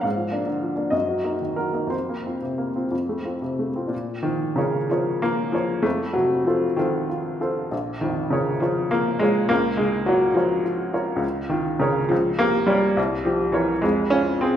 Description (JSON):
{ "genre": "classical, romantic character piece for solo piano", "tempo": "58-70 BPM (dotted quarters)", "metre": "6/8", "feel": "rubato", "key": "Bb minor, F minor from 11.2 s", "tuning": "A4 = 440 Hz", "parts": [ { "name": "clear upright piano", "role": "solo", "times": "0.0-14.6 s", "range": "Bb1 to F5", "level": "-20 LUFS", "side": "equal", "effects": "none" } ], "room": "wet recital hall reverb, RT60 1.4 s", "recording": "heard from further back in the room", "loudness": "-20 LUFS", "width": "side -10 dB against mid", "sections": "0.0-3.9 A section; 3.9-14.6 B section", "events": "none", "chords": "0.0 Bb7/Ab; 0.9 Ebm/Gb; 1.9 Fsus4; 2.9 F; 3.9 Bbm; 5.8 F7; 7.7 Bbm; 9.5 Bbm/Db; 12.1 Gdim/Db; 13.0 C5; 13.8 Fm" }